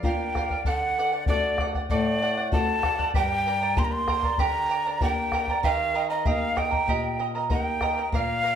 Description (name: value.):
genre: andean folk, Andean ensemble.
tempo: 97 BPM.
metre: 4/4.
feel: straight.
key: unclear.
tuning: A4 = 440 Hz.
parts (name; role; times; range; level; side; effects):
breathy hollow quena; melody; 0.0-8.6 s; D5 to C6; -26 LUFS; equal; none.
charango; accompaniment; 0.0-8.6 s; G4 to Bb5; -28 LUFS; right 4 dB; none.
nylon-string guitar; accompaniment; 0.0-8.6 s; G2 to G4; -32 LUFS; left 2 dB; none.
bombo; percussion; 0.0-8.3 s; none; -28 LUFS; left 1 dB; none.
room: wet large studio reverb, RT60 0.9 s.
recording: band playing live in one room.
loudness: -22 LUFS.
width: side -8 dB against mid.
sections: 0.0-8.6 A section.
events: none.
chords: 0.0 Bb; 0.7 D; 3.1 Gm; 5.6 Eb.